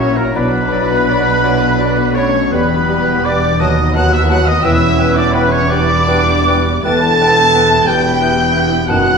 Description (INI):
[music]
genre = classical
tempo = 50-61 BPM (dotted quarters)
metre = 6/8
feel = rubato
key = unclear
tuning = A4 = 439 Hz
[part]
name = muted studio violin section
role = melody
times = 0.0-9.2 s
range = A#5 to A6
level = -21 LUFS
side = left 2 dB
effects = none
[part]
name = clear clarinet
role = second line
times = 0.0-9.0 s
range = B4 to E5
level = -25 LUFS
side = left 2 dB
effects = none
[part]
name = clear oboe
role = second line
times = 0.0-9.2 s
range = A#4 to A5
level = -22 LUFS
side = right 1 dB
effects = none
[part]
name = hollow concert flute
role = second line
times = 0.0-9.0 s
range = G5 to B5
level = -28 LUFS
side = equal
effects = none
[part]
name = muted studio violin section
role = second line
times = 0.0-9.2 s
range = A#4 to A5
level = -22 LUFS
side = left 3 dB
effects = none
[part]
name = mellow bassoon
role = accompaniment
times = 0.0-9.1 s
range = D#3 to G3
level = -24 LUFS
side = right 2 dB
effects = none
[part]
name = muted studio viola section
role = accompaniment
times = 0.0-9.2 s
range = A3 to A4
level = -23 LUFS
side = right 1 dB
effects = none
[part]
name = bright trombone section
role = sustained chords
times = 0.0-9.2 s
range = D#3 to E4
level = -24 LUFS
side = right 1 dB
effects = none
[part]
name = warm French horn section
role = sustained chords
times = 0.0-9.2 s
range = A#3 to A4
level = -20 LUFS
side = left 2 dB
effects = none
[part]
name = concert harp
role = arpeggios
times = 0.0-9.2 s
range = F#2 to B5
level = -22 LUFS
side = left 4 dB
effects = none
[part]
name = bright trumpet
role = stabs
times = 0.0-9.2 s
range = A#4 to A5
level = -18 LUFS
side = right 2 dB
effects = none
[part]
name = muted studio cello section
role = bass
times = 0.0-9.2 s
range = D#2 to B2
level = -21 LUFS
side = right 2 dB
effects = none
[part]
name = muted symphonic double bass section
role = bass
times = 0.0-9.2 s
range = E1 to D#2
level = -20 LUFS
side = right 3 dB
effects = none
[sound]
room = wet recital hall reverb, RT60 1.3 s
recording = recorded in a church or concert hall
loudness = -10 LUFS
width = side -5 dB against mid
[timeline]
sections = 0.0-9.2 A section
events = none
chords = 0.4 Bm; 2.5 Em; 3.6 B7/D#; 4.6 Em7; 6.9 Em